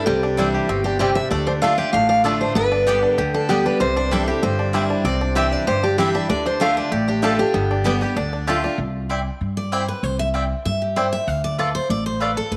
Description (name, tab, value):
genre	bluegrass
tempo	193 BPM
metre	4/4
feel	straight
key	unclear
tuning	A4 = 440 Hz
part	picked steel-string acoustic guitar	melody	0.0-8.6 s	G4 to F5	-23 LUFS	equal	none
part	picked steel-string acoustic guitar	accompaniment	0.0-12.6 s	G2 to F5	-26 LUFS	equal	none
part	bluegrass banjo	arpeggios	0.0-8.8 s	G3 to G4	-29 LUFS	equal	none
part	upright bass	bass	0.1-12.6 s	G1 to G2	-27 LUFS	equal	none
part	mandolin	stabs	0.4-12.3 s	A3 to A5	-29 LUFS	equal	none
room	moderate echo chamber reverb, RT60 1.6 s, small room ambience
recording	none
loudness	-20 LUFS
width	mono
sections	0.0-8.8 A section; 8.8-12.6 B section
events	steel-string acoustic guitar solo 8.8-12.6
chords	0.0 Cadd9; 1.3 Dm; 2.6 G; 3.8 Cadd9; 6.3 Dm; 7.5 G; 8.2 Dm; 8.8 Cadd9; 11.3 Dm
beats	| 0.07 0.38 0.69 1.00 | 1.31 1.62 1.94 2.25 | 2.56 2.87 3.18 3.49 | 3.80 4.12 4.43 4.74 | 5.05 5.36 5.67 5.99 | 6.30 6.61 6.92 7.23 | 7.54 7.85 8.16 8.47 | 8.79 9.10 9.41 9.72 | 10.03 10.34 10.65 10.96 | 11.28 11.59 11.90 12.21 | 12.52